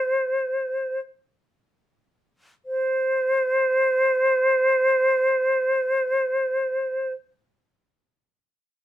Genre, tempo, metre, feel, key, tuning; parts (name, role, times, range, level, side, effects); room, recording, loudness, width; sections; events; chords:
classical, free, expressive piece for unaccompanied flute; free time; A4 = 440 Hz
silver concert flute; solo; 0.0-7.1 s; C5; -20 LUFS; equal
light reverb; minimal, uncompressed stereo recording; -20 LUFS; side -12 dB against mid
0.0-2.7 A section; 2.7-6.8 B section
slowing down 0.0-2.7